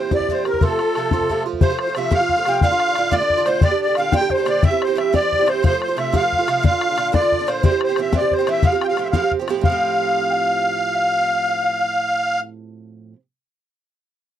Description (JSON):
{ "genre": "celtic folk, Celtic jig", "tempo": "120 BPM (dotted quarters)", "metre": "6/8", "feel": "straight", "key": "F major", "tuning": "A4 = 442 Hz", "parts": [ { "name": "musette accordion", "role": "melody", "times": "0.0-12.4 s", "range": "A4 to G5", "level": "-20 LUFS", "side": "right 1 dB", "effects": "none" }, { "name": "Irish bouzouki", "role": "accompaniment", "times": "0.0-13.2 s", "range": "G2 to G4", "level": "-23 LUFS", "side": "right 8 dB", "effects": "none" }, { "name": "bright wooden flute", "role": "second line", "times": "0.1-12.4 s", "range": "A4 to G5", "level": "-24 LUFS", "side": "left 8 dB", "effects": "none" }, { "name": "bodhran", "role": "percussion", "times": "0.1-9.8 s", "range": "none", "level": "-19 LUFS", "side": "left 3 dB", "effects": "none" } ], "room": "little or no reverb", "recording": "dry, close 1970s-style studio recording", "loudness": "-16 LUFS", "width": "side -11 dB against mid", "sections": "0.0-1.6 A section; 1.6-9.6 B section; 9.6-11.6 C section", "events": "none", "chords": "0.0 C7; 0.6 F; 2.6 Dm; 3.6 Gm; 4.6 C; 5.6 F; 6.6 Bb; 7.6 C7; 8.6 Fadd9" }